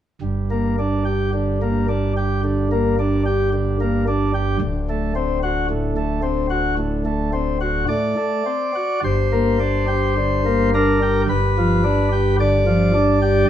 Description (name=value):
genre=classical, chorale-style piece for pipe organ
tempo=55 BPM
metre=4/4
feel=rubato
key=G minor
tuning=A4 = 438 Hz
part: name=chamber organ, principal chorus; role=solo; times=0.2-13.5 s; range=D1 to D5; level=-17 LUFS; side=equal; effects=none
room=moderate stone room reverb, RT60 1.0 s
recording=dark, warm production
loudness=-17 LUFS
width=side -10 dB against mid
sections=0.2-9.0 A section; 9.0-13.5 B section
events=none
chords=0.2 Gm; 4.6 D7; 9.0 Gm; 11.3 G7